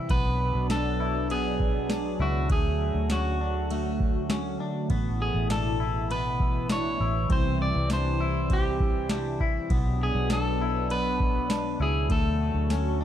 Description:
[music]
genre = dream pop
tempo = 100 BPM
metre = 4/4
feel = straight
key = unclear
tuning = A4 = 441 Hz
[part]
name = phased analog pad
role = sustained chords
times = 0.0-13.0 s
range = B2 to F#4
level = -32 LUFS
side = right 1 dB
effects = phaser, chorus
[part]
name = clean electric guitar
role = arpeggios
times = 0.0-13.0 s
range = A3 to E4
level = -34 LUFS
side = left 6 dB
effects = analog chorus, tape echo
[part]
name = electric guitar at the edge of break-up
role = melody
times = 0.1-13.0 s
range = F#4 to D5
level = -31 LUFS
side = right 1 dB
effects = tape echo
[part]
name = vintage muted fingered electric bass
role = bass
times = 0.1-13.0 s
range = A1 to D2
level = -29 LUFS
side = equal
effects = none
[part]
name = booming analog drum machine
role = drums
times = 0.1-12.8 s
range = kick drum, ride cymbal, snare drum, tambourine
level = -27 LUFS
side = equal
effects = none
[sound]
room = light reverb, digital ambience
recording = dark, warm production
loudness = -24 LUFS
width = side -10 dB against mid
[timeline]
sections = 0.0-13.0 A section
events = none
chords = 0.1 Bm; 2.5 D; 4.9 Asus2; 7.3 C; 9.7 Bm; 12.1 D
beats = | 0.10 0.70 1.30 1.90 | 2.50 3.10 3.70 4.30 | 4.90 5.50 6.10 6.70 | 7.30 7.90 8.50 9.10 | 9.70 10.30 10.90 11.50 | 12.10 12.70

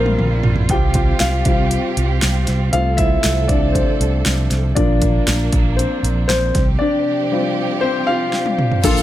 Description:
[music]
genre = piano-driven pop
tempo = 118 BPM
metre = 4/4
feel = straight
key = unclear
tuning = A4 = 438 Hz
[part]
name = warm concert grand piano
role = accompaniment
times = 0.0-9.0 s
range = Bb2 to G5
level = -19 LUFS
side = left 2 dB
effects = none
[part]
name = warm studio string section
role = sustained chords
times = 0.0-9.0 s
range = Bb2 to A4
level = -26 LUFS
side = right 5 dB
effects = none
[part]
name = picked electric bass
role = bass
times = 0.0-9.0 s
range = Bb1 to C2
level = -18 LUFS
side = equal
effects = none
[part]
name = deep house drum kit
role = drums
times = 0.1-9.0 s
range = crash cymbal, hi-hat, kick drum, snare drum, toms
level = -19 LUFS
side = right 1 dB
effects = none
[part]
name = rich studio violin section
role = second line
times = 8.8-9.0 s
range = F4 to F5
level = -23 LUFS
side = right 3 dB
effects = none
[part]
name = tube shaker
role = percussion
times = 8.8-9.0 s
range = none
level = -26 LUFS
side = right 12 dB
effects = none
[sound]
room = light reverb, small room ambience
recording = none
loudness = -14 LUFS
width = side -13 dB against mid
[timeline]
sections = 0.0-8.8 A section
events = drum fill 0.0-0.7, 8.3-8.8; grand piano solo 0.0-8.8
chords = 0.0 Gm7/Bb; 0.7 Csus4; 2.7 F/C; 4.8 Bb; 6.6 Csus4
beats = 0.19 | 0.70 1.21 1.72 2.23 | 2.74 3.25 3.75 4.26 | 4.77 5.28 5.79 6.30 | 6.81 7.32 7.82 8.33 | 8.84

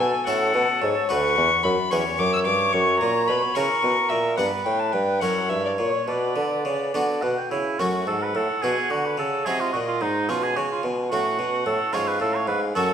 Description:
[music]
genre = classical, baroque-style sonata movement with continuo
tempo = 73 BPM (dotted quarters)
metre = 6/8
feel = straight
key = B minor, F# minor from 7.8 s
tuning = A4 = 440 Hz
[part]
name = dark violin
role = melody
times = 0.0-12.9 s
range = B4 to E6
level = -26 LUFS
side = left 6 dB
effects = none
[part]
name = warm oboe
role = second line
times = 0.0-12.9 s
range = D#4 to G5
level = -26 LUFS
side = right 4 dB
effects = none
[part]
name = harpsichord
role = accompaniment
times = 0.0-12.9 s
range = D2 to B4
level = -28 LUFS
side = left 1 dB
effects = none
[part]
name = warm bassoon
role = bass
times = 0.0-12.9 s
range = D2 to D3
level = -25 LUFS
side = right 1 dB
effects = none
[sound]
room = moderate recital hall reverb, RT60 1.4 s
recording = dark, warm production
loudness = -20 LUFS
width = side -8 dB against mid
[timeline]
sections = 0.0-7.8 A section; 7.8-12.9 A section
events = none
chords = 0.3 F#m/A; 1.1 Bm/D; 1.9 C#m7b5/E; 2.7 F#7; 4.4 G; 5.2 F#7; 6.1 Bm; 7.8 F#m; 8.6 Bm; 9.5 G#7; 10.3 C#5/B; 11.1 F#m/A; 11.9 C#/G#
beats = 0.27 | 1.09 1.92 | 2.74 3.56 | 4.38 5.22 | 6.08 6.94 | 7.79 8.63 | 9.46 10.29 | 11.11 11.93 | 12.75

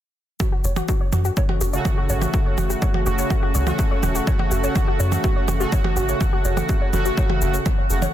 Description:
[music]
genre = melodic techno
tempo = 124 BPM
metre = 4/4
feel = straight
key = F# minor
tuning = A4 = 441 Hz
[part]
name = warbly dusty pluck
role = arpeggios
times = 0.4-8.1 s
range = F#4 to F#5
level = -28 LUFS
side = left 1 dB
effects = chorus, sidechain pumping, tape echo
[part]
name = electronic kick drum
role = drums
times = 0.4-7.8 s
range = none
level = -21 LUFS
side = equal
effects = none
[part]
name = percussion blips and shaker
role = drums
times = 0.4-8.1 s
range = none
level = -28 LUFS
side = right 4 dB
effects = none
[part]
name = warbly tape-like pad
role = texture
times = 1.2-8.1 s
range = C#4 to F#5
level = -32 LUFS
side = left 1 dB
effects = chorus, built-in reverb, sidechain pumping
[part]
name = tight sequencer bass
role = bass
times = 0.6-8.1 s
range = E1 to F#2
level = -22 LUFS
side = equal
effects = sidechain pumping
[part]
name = analog synth brass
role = stabs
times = 1.7-8.0 s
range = C#3 to F#4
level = -26 LUFS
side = right 2 dB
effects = chorus, sidechain pumping, tape echo
[sound]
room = light reverb, digital ambience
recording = dense, heavily limited modern master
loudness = -18 LUFS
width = side -12 dB against mid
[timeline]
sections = 0.4-8.1 A section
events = none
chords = 0.4 F#m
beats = | 0.40 0.89 1.37 1.85 | 2.34 2.82 3.30 3.79 | 4.27 4.76 5.24 5.72 | 6.21 6.69 7.17 7.66

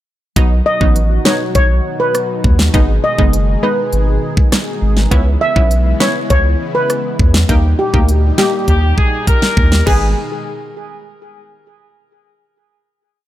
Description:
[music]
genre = dancehall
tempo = 101 BPM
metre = 4/4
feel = straight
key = unclear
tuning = A4 = 440 Hz
[part]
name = punchy chord stab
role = accompaniment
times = 0.4-10.1 s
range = F#3 to G#4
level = -20 LUFS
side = right 1 dB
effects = chorus
[part]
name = warm analog pad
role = sustained chords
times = 0.4-10.1 s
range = A#2 to G#4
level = -23 LUFS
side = left 1 dB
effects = chorus, sidechain pumping
[part]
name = saturated sub bass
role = bass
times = 0.4-10.1 s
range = F#1 to E2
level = -14 LUFS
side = equal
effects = none
[part]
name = pop drum kit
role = drums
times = 0.4-10.0 s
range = crash cymbal, hi-hat, kick drum, rim click, snare drum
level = -14 LUFS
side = equal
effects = none
[part]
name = steel pan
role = melody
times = 0.7-10.1 s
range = G4 to E5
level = -18 LUFS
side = equal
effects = ping-pong delay
[part]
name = warm horn section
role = second line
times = 8.7-10.1 s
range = G4 to B4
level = -20 LUFS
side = left 2 dB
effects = ping-pong delay
[sound]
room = digital ambience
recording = none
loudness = -11 LUFS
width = side -14 dB against mid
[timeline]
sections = 0.4-9.9 chorus; 9.9-12.2 final chord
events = drum fill 8.7-9.9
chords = 0.4 B; 2.7 G#m; 5.1 C#m7; 7.5 D#; 9.9 G#m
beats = | 0.36 0.96 1.55 2.15 | 2.74 3.33 3.93 4.52 | 5.12 5.71 6.30 6.90 | 7.49 8.09 8.68 9.27 | 9.87

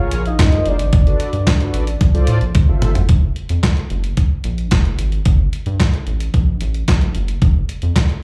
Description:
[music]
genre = early-eighties boogie funk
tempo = 111 BPM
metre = 4/4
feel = straight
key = unclear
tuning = A4 = 440 Hz
[part]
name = soft octave-layered synth lead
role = melody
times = 0.0-2.3 s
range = D5 to F5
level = -26 LUFS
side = equal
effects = chorus, phaser, slapback echo, analog delay
[part]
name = mellow synth brass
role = accompaniment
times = 0.0-2.9 s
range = F4 to E5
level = -29 LUFS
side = equal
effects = chorus, slapback echo
[part]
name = rubbery square bass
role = bass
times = 0.0-7.9 s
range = F1 to A2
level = -20 LUFS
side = equal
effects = none
[part]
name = crisp 8-bit digital drum machine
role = drums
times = 0.1-8.2 s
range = handclaps, hi-hat, kick drum, snare drum, toms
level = -18 LUFS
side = equal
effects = none
[sound]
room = digital ambience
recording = live gig heard through the venue's PA, club reverb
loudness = -16 LUFS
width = mono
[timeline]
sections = 0.0-3.1 A section; 3.1-8.2 B section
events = drum fill 2.6-3.1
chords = 0.0 Gbmaj9; 0.9 Gmaj9; 2.0 Bbmaj9; 3.1 N.C.; 3.9 Gbadd9; 5.3 Gsus2; 6.3 Gb; 7.4 N.C.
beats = 0.39 | 0.93 1.47 2.01 2.55 | 3.10 3.63 4.18 4.72 | 5.26 5.80 6.34 6.88 | 7.42 7.96

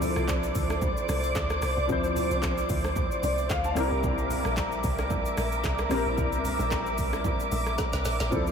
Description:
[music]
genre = amapiano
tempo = 112 BPM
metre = 4/4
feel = swing 55% on 16ths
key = unclear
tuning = A4 = 440 Hz
[part]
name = warm baby grand piano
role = accompaniment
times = 0.0-8.5 s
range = F3 to A5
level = -30 LUFS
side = left 2 dB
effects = ensemble chorus
[part]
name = muted studio string section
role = sustained chords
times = 0.0-8.5 s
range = Bb4 to D6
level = -31 LUFS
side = right 1 dB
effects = sidechain pumping
[part]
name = deep log drum bass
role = bass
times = 0.0-8.5 s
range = Bb1 to D2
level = -31 LUFS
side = equal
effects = none
[part]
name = afro-pop drum kit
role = drums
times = 0.0-8.5 s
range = handclaps, hi-hat, kick drum, rim click, shaker, snare drum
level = -32 LUFS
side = equal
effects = none
[part]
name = congas and bongos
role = percussion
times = 0.0-8.5 s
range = none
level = -38 LUFS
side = right 4 dB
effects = none
[sound]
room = wet cathedral reverb, RT60 5.2 s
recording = dreamy mix soaked in reverb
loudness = -25 LUFS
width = side -7 dB against mid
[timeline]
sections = 0.0-8.5 A section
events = drum fill 7.8-8.3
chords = 0.0 Dm7; 3.8 C9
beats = 0.28 0.82 1.36 | 1.89 2.43 2.96 3.50 | 4.04 4.57 5.11 5.64 | 6.18 6.71 7.25 7.79 | 8.32

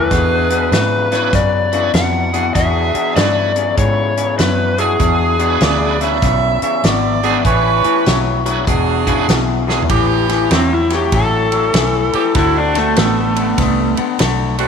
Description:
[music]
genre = electric blues shuffle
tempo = 98 BPM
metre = 4/4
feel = swing 65% on 8ths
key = A major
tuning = A4 = 445 Hz
[part]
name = overdriven slide guitar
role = melody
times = 0.0-6.0, 10.5-14.0 s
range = A3 to F#5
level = -17 LUFS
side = equal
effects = none
[part]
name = electric guitar through a small old amp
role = riff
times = 0.0-14.7 s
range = E2 to B3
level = -19 LUFS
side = left 11 dB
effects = none
[part]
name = vintage muted fingered electric bass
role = bass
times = 0.0-14.7 s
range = E1 to G#2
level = -19 LUFS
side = right 1 dB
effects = none
[part]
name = edgy saxophone section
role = stabs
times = 0.1-14.7 s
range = B3 to B4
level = -21 LUFS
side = right 10 dB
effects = none
[part]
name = natural country drum kit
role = drums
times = 0.1-14.7 s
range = hi-hat, kick drum, ride cymbal, snare drum, toms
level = -20 LUFS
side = right 1 dB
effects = none
[part]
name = bright tonewheel organ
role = accompaniment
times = 1.1-9.3 s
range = B3 to B4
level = -26 LUFS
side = right 12 dB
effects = slow rotary speaker, overdrive
[part]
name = mellow harmonica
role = second line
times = 5.6-8.0 s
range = C#5 to E5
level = -19 LUFS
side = right 9 dB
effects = overdrive
[sound]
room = moderate echo chamber reverb, RT60 2.4 s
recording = 1960s-style stereo with parts hard left and right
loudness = -12 LUFS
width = side -6 dB against mid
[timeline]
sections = 0.0-9.9 A section; 9.9-14.7 B section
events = drum fill 9.6-9.9; electric slide guitar solo 9.9-14.7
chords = 0.1 E9; 7.4 A9; 8.7 E9; 9.9 A9; 12.4 D9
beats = | 0.12 0.72 1.33 1.95 | 2.56 3.17 3.78 4.39 | 5.00 5.61 6.22 6.84 | 7.45 8.06 8.67 9.29 | 9.90 10.51 11.12 11.74 | 12.35 12.96 13.58 14.19

